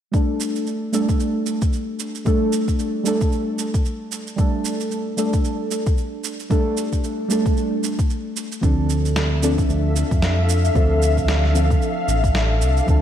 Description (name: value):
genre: organic downtempo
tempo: 113 BPM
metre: 4/4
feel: swing 58% on 16ths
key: unclear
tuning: A4 = 440 Hz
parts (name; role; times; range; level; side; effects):
- deep mellow chord stab; accompaniment; 0.1-13.0 s; F3 to A4; -23 LUFS; right 1 dB; chorus, phaser, sidechain pumping, tape echo
- electronic cabasa and snare drum; drums; 0.1-13.0 s; none; -29 LUFS; right 3 dB; none
- electronic kick drum; drums; 0.1-13.0 s; none; -20 LUFS; equal; none
- ethereal airy pad; sustained chords; 9.3-13.0 s; D4 to F5; -24 LUFS; left 2 dB; ensemble chorus, built-in reverb, tremolo, sidechain pumping
- smooth synth bass; bass; 8.6-13.0 s; A1 to F2; -19 LUFS; equal; none
room: moderate lush hall reverb, RT60 1.6 s, digital ambience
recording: dreamy mix soaked in reverb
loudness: -18 LUFS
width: side -10 dB against mid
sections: 0.1-13.0 A section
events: none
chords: 0.1 Gsus2; 8.6 Dm7